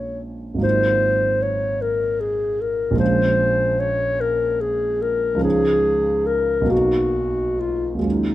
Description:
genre	classical, impressionist duo for clarinet and grand piano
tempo	44-51 BPM (dotted quarters)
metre	6/8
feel	rubato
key	unclear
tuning	A4 = 439 Hz
part	dark clarinet	melody	0.0-8.3 s	Eb4 to Db5	-20 LUFS	left 2 dB	none
part	dark concert grand piano	accompaniment	0.0-8.3 s	Ab1 to F#4	-22 LUFS	right 2 dB	none
room	moderate recital hall reverb, RT60 1.6 s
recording	close, detailed microphones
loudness	-18 LUFS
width	side -14 dB against mid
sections	0.0-8.3 A section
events	none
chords	0.0 Db69/Bb; 0.6 Ab13; 3.0 Bbm7; 5.4 Dbadd9; 6.7 Bmaj7

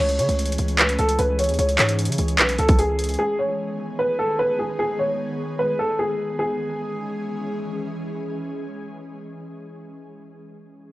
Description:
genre	hip hop, trap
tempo	150 BPM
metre	4/4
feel	half-time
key	C# minor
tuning	A4 = 440 Hz
part	dark baby grand piano	melody	0.0-7.5 s	G#4 to C#5	-23 LUFS	equal	low-pass filter, cassette tape, tape echo
part	ethereal airy pad	sustained chords	0.1-9.5 s	D#3 to G#4	-30 LUFS	equal	ensemble chorus, built-in reverb, cassette tape
part	hard-hitting 808-style bass	bass	0.0-3.2 s	B1 to C#3	-23 LUFS	equal	none
part	trap drum kit	drums	0.1-3.2 s	handclaps, hi-hat, kick drum	-21 LUFS	equal	overdrive, cassette tape
room	light reverb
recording	home recording on cassette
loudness	-20 LUFS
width	side -18 dB against mid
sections	0.0-6.4 A section; 6.4-9.6 B section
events	none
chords	0.0 C#m; 3.2 G#m; 6.4 C#m

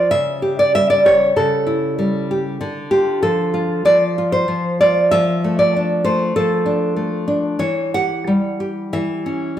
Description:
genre	romantic piece for solo classical guitar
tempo	95 BPM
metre	4/4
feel	rubato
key	D minor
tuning	A4 = 440 Hz
part	nylon-string guitar	solo	0.0-9.6 s	C#3 to F#5	-15 LUFS	equal	none
room	moderate large studio reverb, RT60 1.3 s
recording	band playing live in one room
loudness	-15 LUFS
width	side -11 dB against mid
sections	0.0-9.6 A section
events	none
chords	0.1 A7/C#; 2.6 Dm; 5.1 Dm/F; 7.6 C#dim/E

